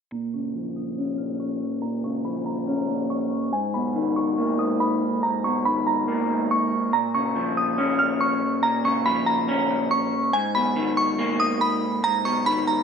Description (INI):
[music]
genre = hip hop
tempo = 141 BPM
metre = 4/4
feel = half-time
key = Bb phrygian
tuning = A4 = 439 Hz
[part]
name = glassy synth bell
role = melody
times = 0.1-12.8 s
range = Ab5 to F6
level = -24 LUFS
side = right 1 dB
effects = chorus, low-pass filter, ping-pong delay
[part]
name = electric guitar through a small old amp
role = accompaniment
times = 0.1-12.8 s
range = Ab2 to Db4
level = -24 LUFS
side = left 1 dB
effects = low-pass filter
[sound]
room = light reverb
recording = none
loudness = -21 LUFS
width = side -6 dB against mid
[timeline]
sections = 0.1-12.8 A section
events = filter sweep 0.1-12.8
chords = 0.1 Bbm; 3.5 Abmadd9; 6.9 Bbm; 10.3 Abmadd9